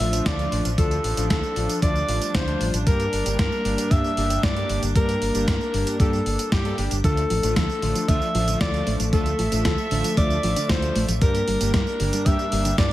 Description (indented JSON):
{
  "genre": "italo disco",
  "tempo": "115 BPM",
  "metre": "4/4",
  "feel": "straight",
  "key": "D minor",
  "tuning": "A4 = 440 Hz",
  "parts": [
    { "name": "warm alto saxophone", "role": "melody", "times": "0.0-12.9 s", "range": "G4 to E5", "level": "-26 LUFS", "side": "left 1 dB", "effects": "ping-pong delay" },
    { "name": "rich chamber string section", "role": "sustained chords", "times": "0.0-12.9 s", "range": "F3 to E5", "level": "-30 LUFS", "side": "right 1 dB", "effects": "none" },
    { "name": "analog synth brass", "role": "stabs", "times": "0.0-12.9 s", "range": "G2 to A4", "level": "-30 LUFS", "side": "left 2 dB", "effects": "chorus" },
    { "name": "fingered electric bass with an envelope filter", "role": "bass", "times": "0.0-12.9 s", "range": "G1 to G2", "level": "-26 LUFS", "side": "equal", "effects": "none" },
    { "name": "clean 12-bit digital drum machine", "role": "drums", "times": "0.0-12.9 s", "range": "hi-hat, snare drum, tambourine", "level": "-28 LUFS", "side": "equal", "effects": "gated reverb" },
    { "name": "electronic kick drum", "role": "drums", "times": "0.3-12.9 s", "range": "none", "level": "-22 LUFS", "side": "equal", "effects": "none" },
    { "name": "soft round pluck", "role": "arpeggios", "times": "7.0-12.9 s", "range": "D3 to Bb3", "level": "-30 LUFS", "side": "right 1 dB", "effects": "chorus, ping-pong delay" }
  ],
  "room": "light reverb",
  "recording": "vinyl crackle",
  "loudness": "-20 LUFS",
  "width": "side -15 dB against mid",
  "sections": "0.0-12.9 A section",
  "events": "none",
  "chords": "0.0 Dm; 2.9 Gm; 7.0 Dm; 11.2 Gm"
}